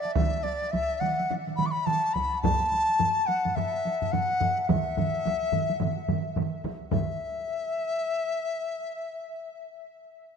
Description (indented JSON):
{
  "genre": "japanese traditional, taiko drum ensemble",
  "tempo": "107 BPM",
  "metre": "4/4",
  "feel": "swing 60% on 16ths",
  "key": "E suspended pentatonic",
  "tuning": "A4 = 439 Hz",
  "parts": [
    { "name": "mellow dizi", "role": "melody", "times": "0.0-9.9 s", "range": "D5 to D6", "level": "-27 LUFS", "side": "left 2 dB", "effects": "none" },
    { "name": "taiko ensemble", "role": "percussion", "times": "0.1-7.2 s", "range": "none", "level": "-33 LUFS", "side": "right 1 dB", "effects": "none" },
    { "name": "taiko ensemble", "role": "percussion", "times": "0.2-7.4 s", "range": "none", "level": "-31 LUFS", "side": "right 6 dB", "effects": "none" },
    { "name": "taiko ensemble", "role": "percussion", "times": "0.2-7.2 s", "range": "none", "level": "-32 LUFS", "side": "right 2 dB", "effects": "none" },
    { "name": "taiko ensemble", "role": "percussion", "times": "2.4-7.4 s", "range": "none", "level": "-31 LUFS", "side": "left 2 dB", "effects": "none" }
  ],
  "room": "moderate huge ambient reverb, RT60 4.8 s",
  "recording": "minimal, uncompressed stereo recording",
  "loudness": "-25 LUFS",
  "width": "side -6 dB against mid",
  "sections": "0.0-6.9 A section; 6.9-9.1 B section",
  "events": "speeding up 0.0-9.1",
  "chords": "none"
}